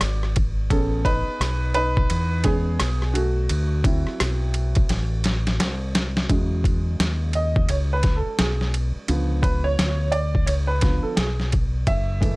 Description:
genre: hip hop, jazz-hop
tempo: 86 BPM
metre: 4/4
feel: swing 61% on 16ths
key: E major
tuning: A4 = 444 Hz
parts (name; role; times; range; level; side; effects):
- warm upright piano; accompaniment; 0.0-12.4 s; C#3 to E5; -26 LUFS; right 2 dB; plate reverb
- deep dub fingered electric bass; bass; 0.0-12.4 s; F#1 to E2; -23 LUFS; equal; none
- boom bap sampler-style drum kit; drums; 0.0-12.4 s; hi-hat, kick drum, ride cymbal, rim click, snare drum; -24 LUFS; equal; overdrive
room: little or no reverb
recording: none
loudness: -20 LUFS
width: side -23 dB against mid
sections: 0.0-6.3 A section; 6.3-12.4 B section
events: upright piano solo 0.0-6.3, 6.3-12.4; drum fill 4.9-6.3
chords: 0.0 E9 (rootless); 0.7 Amaj9; 3.5 D9; 6.3 E69; 9.1 C#7b9

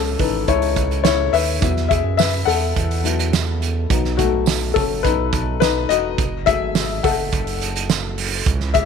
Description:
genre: piano-driven pop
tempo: 105 BPM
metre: 4/4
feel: straight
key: unclear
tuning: A4 = 440 Hz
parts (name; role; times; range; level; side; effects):
- dark upright piano; accompaniment; 0.0-8.9 s; E3 to F#5; -20 LUFS; left 11 dB; none
- round analog bass; bass; 0.0-8.9 s; E1 to F#2; -23 LUFS; right 2 dB; none
- loose indie drum kit; drums; 0.2-8.9 s; hi-hat, kick drum, snare drum; -22 LUFS; right 6 dB; none
- tambourine; percussion; 1.1-8.0 s; none; -31 LUFS; right 17 dB; none
- warm studio string section; sustained chords; 8.5-8.9 s; E3 to C#4; -36 LUFS; right 4 dB; none
room: light reverb, small room ambience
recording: 1960s-style stereo with parts hard left and right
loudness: -17 LUFS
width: side -6 dB against mid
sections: 0.0-8.9 A section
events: upright piano solo 0.0-8.9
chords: 0.0 C#madd9; 1.6 Esus2; 3.9 B; 6.2 F#madd9

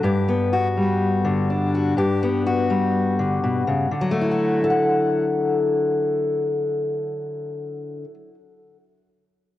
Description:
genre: folk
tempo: 124 BPM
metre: 4/4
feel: straight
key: D major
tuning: A4 = 440 Hz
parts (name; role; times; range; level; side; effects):
- fingerpicked steel-string acoustic guitar; solo; 0.0-8.8 s; G2 to F#5; -19 LUFS; left 2 dB; cassette tape, analog delay
room: moderate lush hall reverb, RT60 2.1 s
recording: home recording on cassette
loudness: -19 LUFS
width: side -14 dB against mid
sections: 0.0-3.9 A section; 3.9-7.8 B section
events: none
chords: 0.0 G; 3.9 Dadd9

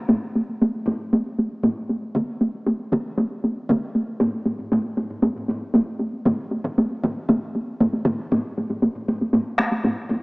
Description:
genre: japanese traditional, taiko drum ensemble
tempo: 117 BPM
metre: 4/4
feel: straight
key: none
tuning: none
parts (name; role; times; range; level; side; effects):
- taiko ensemble; percussion; 0.1-10.2 s; none; -21 LUFS; equal; none
- taiko ensemble; percussion; 0.1-10.2 s; none; -31 LUFS; left 1 dB; none
- taiko ensemble; percussion; 2.1-8.2 s; none; -30 LUFS; equal; none
room: moderate lush hall reverb, RT60 2.5 s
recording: rough home demo mix, small speaker sound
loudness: -21 LUFS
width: side -28 dB against mid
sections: 0.0-8.3 A section; 8.3-10.2 B section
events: none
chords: none

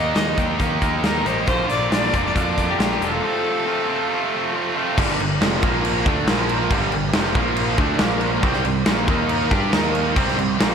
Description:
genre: classic rock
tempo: 138 BPM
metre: 4/4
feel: straight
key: unclear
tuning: A4 = 442 Hz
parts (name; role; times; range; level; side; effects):
- clear fiddle; melody; 0.0-4.6 s; G4 to Eb5; -24 LUFS; left 2 dB; slapback echo
- overdriven electric guitar; riff; 0.0-10.7 s; F2 to G4; -25 LUFS; left 9 dB; slapback echo
- tight distorted guitar; riff; 0.0-10.7 s; F2 to G4; -24 LUFS; right 9 dB; distortion, slapback echo
- growling picked electric bass; bass; 0.0-10.7 s; E1 to G2; -26 LUFS; equal; overdrive
- big rock drum kit; drums; 0.2-10.7 s; crash cymbal, hi-hat, kick drum, snare drum; -22 LUFS; equal; none
- overdriven tonewheel organ; sustained chords; 5.0-10.7 s; G3 to C5; -30 LUFS; equal; none
room: moderate lush hall reverb, RT60 2.1 s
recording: big arena sound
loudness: -18 LUFS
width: side -7 dB against mid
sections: 0.0-5.0 A section; 5.0-10.7 B section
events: break 3.2-5.0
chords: 0.0 Eb; 1.5 Bb; 3.2 F; 5.0 Gm; 5.6 Bb5; 6.1 D5; 6.3 Bb5; 6.7 Gm; 7.4 Bb5; 7.8 D5; 8.0 Bb5; 8.4 C5; 9.1 Eb5; 9.5 G5; 9.7 Eb5; 10.2 C5

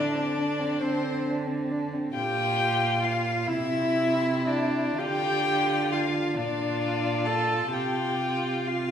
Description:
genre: classical, slow romantic movement for string quartet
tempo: 38-46 BPM (dotted quarters)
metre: 6/8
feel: rubato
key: unclear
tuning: A4 = 440 Hz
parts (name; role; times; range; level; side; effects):
- warm violin; melody; 0.0-8.9 s; C5 to A5; -29 LUFS; left 4 dB; none
- dark violin; second line; 0.0-8.9 s; C4 to F4; -31 LUFS; left 1 dB; none
- warm viola; accompaniment; 0.0-8.9 s; C4 to A4; -30 LUFS; right 2 dB; none
- dark cello; bass; 0.0-8.9 s; Bb2 to D3; -30 LUFS; right 3 dB; none
room: wet recital hall reverb, RT60 1.3 s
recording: recorded in a church or concert hall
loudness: -24 LUFS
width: side -8 dB against mid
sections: 0.0-8.9 A section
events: none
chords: 0.0 Csus2/D; 2.1 Gm7/Bb; 3.5 C; 5.0 Dm; 6.4 Bb; 7.7 F5/C

